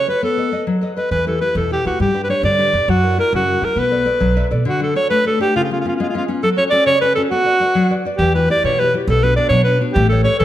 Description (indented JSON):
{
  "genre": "italian folk, Italian serenade",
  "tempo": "136 BPM (dotted quarters)",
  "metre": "6/8",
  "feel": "straight",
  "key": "B minor",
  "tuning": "A4 = 440 Hz",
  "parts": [
    { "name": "bright alto saxophone", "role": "melody", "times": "0.0-10.4 s", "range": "E#4 to D5", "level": "-16 LUFS", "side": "right 1 dB", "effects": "slapback echo" },
    { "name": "nylon-string guitar", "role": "accompaniment", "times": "0.0-10.4 s", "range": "B2 to E5", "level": "-21 LUFS", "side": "left 3 dB", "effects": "none" },
    { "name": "upright bass", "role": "bass", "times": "1.1-4.6, 8.2-10.4 s", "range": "A1 to E3", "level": "-19 LUFS", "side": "equal", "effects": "none" }
  ],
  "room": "moderate recital hall reverb, RT60 1.6 s",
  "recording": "close, detailed microphones",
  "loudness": "-14 LUFS",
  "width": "side -12 dB against mid",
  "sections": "0.0-4.7 A section; 4.7-10.4 B section",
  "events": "nylon-string guitar fill 4.2-4.7",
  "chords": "0.2 B7; 1.1 Em; 2.0 G; 2.9 F#7; 3.8 Bm7; 4.7 D; 5.5 C#7; 6.4 F#m; 7.3 Bm; 8.2 Emadd9; 9.1 Bm"
}